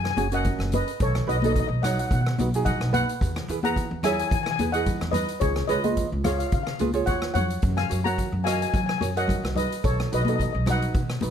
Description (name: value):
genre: calypso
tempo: 109 BPM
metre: 4/4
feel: swing 54% on 16ths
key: F# major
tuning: A4 = 440 Hz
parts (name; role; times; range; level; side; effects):
- steel pan; melody; 0.0-11.2 s; G#4 to A#5; -28 LUFS; left 2 dB; none
- upright bass; bass; 0.0-11.3 s; F#1 to F#3; -27 LUFS; equal; none
- street-band drum kit; drums; 0.1-11.3 s; hi-hat, kick drum, rim click; -29 LUFS; equal; none
- ukulele; accompaniment; 0.2-11.3 s; C#4 to D#5; -30 LUFS; right 6 dB; none
- congas; percussion; 0.2-11.3 s; none; -30 LUFS; left 3 dB; none
room: little or no reverb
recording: close, detailed microphones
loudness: -22 LUFS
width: side -8 dB against mid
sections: 0.0-11.3 A section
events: none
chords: 0.0 F#; 1.0 B; 3.2 E; 5.4 C#7; 7.6 F#; 9.8 B7